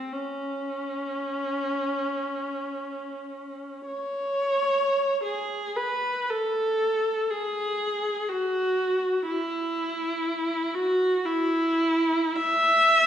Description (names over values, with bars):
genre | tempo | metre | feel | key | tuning
classical, free, expressive piece for unaccompanied viola | free time | none | none | E major from 5.2 s | A4 = 440 Hz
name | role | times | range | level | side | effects
warm viola | solo | 0.0-13.1 s | B#3 to E5 | -24 LUFS | equal | none
room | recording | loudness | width
wet recital hall reverb, RT60 1.4 s | recorded in a church or concert hall, nothing above 10.4 kHz | -24 LUFS | side -10 dB against mid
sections
0.0-5.2 A section; 5.2-13.1 B section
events
none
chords
none